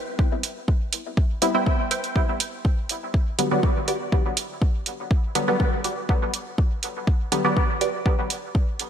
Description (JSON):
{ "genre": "dub techno", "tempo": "122 BPM", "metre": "4/4", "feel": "straight", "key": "unclear", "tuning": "A4 = 438 Hz", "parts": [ { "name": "filtered dub chord stab", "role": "riff", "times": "0.0-7.9 s", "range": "F#4 to G5", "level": "-29 LUFS", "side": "right 3 dB", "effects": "phaser, sidechain pumping, dub echo" }, { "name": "electronic kick drum", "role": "drums", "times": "0.2-8.7 s", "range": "none", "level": "-21 LUFS", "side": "equal", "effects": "overdrive" }, { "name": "electronic hi-hat", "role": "drums", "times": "0.4-8.9 s", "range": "none", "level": "-27 LUFS", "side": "right 5 dB", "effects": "none" }, { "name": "filtered dub chord stab", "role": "stabs", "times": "1.4-7.6 s", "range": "D3 to E4", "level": "-26 LUFS", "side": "left 1 dB", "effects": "chorus, phaser, sidechain pumping, dub echo" } ], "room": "moderate lush hall reverb, RT60 2.1 s", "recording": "bright 1980s-style digital production", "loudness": "-21 LUFS", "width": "side -8 dB against mid", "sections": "0.0-8.9 A section", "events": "none", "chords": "0.0 Gadd11; 3.1 Dadd11" }